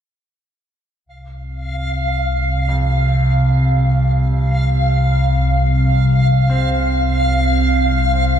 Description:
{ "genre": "dark ambient drone", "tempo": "free time", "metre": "none", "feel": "none", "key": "unclear", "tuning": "A4 = 440 Hz", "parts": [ { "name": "analog drone", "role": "drone", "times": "1.4-8.4 s", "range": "C2 to C3", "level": "-15 LUFS", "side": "equal", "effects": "lush chorus" }, { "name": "backwards swelling texture", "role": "texture", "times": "1.6-8.4 s", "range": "F5", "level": "-21 LUFS", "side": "equal", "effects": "built-in reverb" }, { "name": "bright baby grand piano", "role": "arpeggios", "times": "2.7-8.4 s", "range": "F2 to C4", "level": "-30 LUFS", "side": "right 4 dB", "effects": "analog delay" } ], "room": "wet cathedral reverb, RT60 5.3 s", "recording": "dreamy mix soaked in reverb", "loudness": "-14 LUFS", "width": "side -9 dB against mid", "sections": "1.1-8.4 A section", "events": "none", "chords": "1.1 F5" }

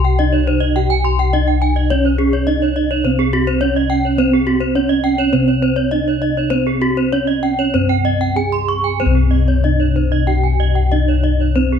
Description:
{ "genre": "Balinese gamelan", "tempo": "94-105 BPM", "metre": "4/4", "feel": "straight", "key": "C pelog", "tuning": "A4 = 437 Hz", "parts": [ { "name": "gamelan-type bronze metallophone", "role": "melody", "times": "0.0-11.8 s", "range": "C4 to Ab4-20c", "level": "-18 LUFS", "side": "right 6 dB", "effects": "tape echo" }, { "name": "gamelan-type bronze metallophone", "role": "arpeggios", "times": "0.0-11.7 s", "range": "G4-30c to Db6+20c", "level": "-21 LUFS", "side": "left 4 dB", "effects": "none" }, { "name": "gamelan-type bossed gongs", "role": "bass", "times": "0.0-11.8 s", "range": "C2 to G4-30c", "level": "-17 LUFS", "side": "left 3 dB", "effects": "none" }, { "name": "gamelan-type bronze metallophone", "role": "arpeggios", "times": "0.3-11.8 s", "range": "Ab4-20c to C6", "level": "-24 LUFS", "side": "right 6 dB", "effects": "none" } ], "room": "light reverb", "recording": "close, detailed microphones", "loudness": "-13 LUFS", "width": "side -7 dB against mid", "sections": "0.0-9.0 A section; 9.0-11.8 B section", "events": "none", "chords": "none" }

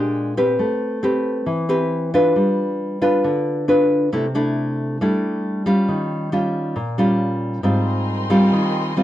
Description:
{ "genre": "bossa nova", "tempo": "136 BPM", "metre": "4/4", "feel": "straight", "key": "unclear", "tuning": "A4 = 440 Hz", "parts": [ { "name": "nylon-string guitar", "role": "accompaniment", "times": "0.0-9.0 s", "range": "Ab2 to B4", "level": "-17 LUFS", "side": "equal", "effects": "none" }, { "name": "warm studio string section", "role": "sustained chords", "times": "7.6-9.0 s", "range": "Bb4 to C6", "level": "-27 LUFS", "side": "left 1 dB", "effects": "none" } ], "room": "moderate studio reverb, RT60 0.8 s", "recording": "dark, warm production", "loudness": "-17 LUFS", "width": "side -13 dB against mid", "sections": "0.0-7.6 A section; 7.6-9.0 B section", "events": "none", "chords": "0.0 Bb13; 0.6 Am9; 2.4 G7; 4.1 C69; 5.9 Eb9; 7.6 Abmaj13" }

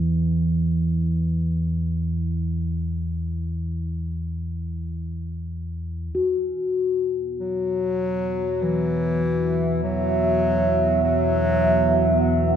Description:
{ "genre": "dark ambient drone", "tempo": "49 BPM", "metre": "4/4", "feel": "straight", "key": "unclear", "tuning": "A4 = 440 Hz", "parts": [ { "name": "deep rumbling drone", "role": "drone", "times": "0.0-12.6 s", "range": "E2 to E3", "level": "-25 LUFS", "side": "equal", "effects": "built-in reverb, wide subtle chorus" }, { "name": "quartz singing bowl", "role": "texture", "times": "0.0-12.6 s", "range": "E4 to F#4", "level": "-28 LUFS", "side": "left 6 dB", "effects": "none" }, { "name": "deep dark ambient pad", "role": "sustained chords", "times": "8.3-12.6 s", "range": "B3 to F#5", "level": "-22 LUFS", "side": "right 2 dB", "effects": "chorus, built-in reverb" }, { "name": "mellow bass clarinet", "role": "melody", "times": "7.4-12.5 s", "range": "E3 to F#3", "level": "-24 LUFS", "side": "equal", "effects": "analog delay" } ], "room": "wet plate reverb, RT60 2.9 s", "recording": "echo-heavy mix", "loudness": "-21 LUFS", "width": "side -9 dB against mid", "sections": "0.0-6.1 A section; 6.1-12.6 B section", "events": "filter sweep on synth drone 6.1-12.6", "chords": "0.0 N.C.; 6.1 Esus2" }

